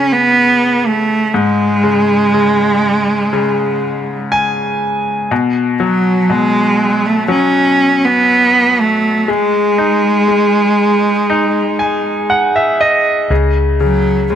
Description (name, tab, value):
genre	pop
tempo	60 BPM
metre	4/4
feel	straight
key	unclear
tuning	A4 = 438 Hz
part	rich cello	melody	0.0-14.4 s	F#3 to C#4	-12 LUFS	right 2 dB	none
part	bright grand piano	accompaniment	0.0-14.4 s	G#2 to G#5	-15 LUFS	left 3 dB	none
part	vintage muted fingered electric bass	bass	13.3-14.4 s	C#2	-15 LUFS	equal	none
room	light reverb, small room ambience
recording	none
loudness	-11 LUFS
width	side -9 dB against mid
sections	0.0-14.4 A section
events	grand piano fill 3.8-5.3, 11.3-13.3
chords	0.0 C#5; 5.3 B5; 9.3 G#5; 13.3 C#5